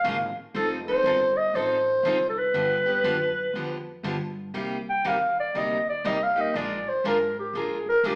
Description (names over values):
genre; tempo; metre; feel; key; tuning
acoustic string swing (jazz manouche); 120 BPM; 4/4; swing 65% on 8ths; C minor; A4 = 442 Hz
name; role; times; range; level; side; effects
growling clarinet; melody; 0.0-8.2 s; G4 to G5; -26 LUFS; equal; none
picked steel-string acoustic guitar; accompaniment; 0.0-8.2 s; C3 to Bb4; -33 LUFS; equal; none
upright bass; bass; 0.0-8.2 s; F1 to G2; -42 LUFS; equal; none
room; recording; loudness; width
wet large studio reverb, RT60 1.1 s; band playing live in one room, AM radio sound; -26 LUFS; mono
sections
0.0-4.5 A section; 4.5-8.2 B section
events
clarinet solo 4.5-8.2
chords
0.0 Db6; 0.5 F7; 2.5 G7; 4.5 Cm7; 6.5 Bb7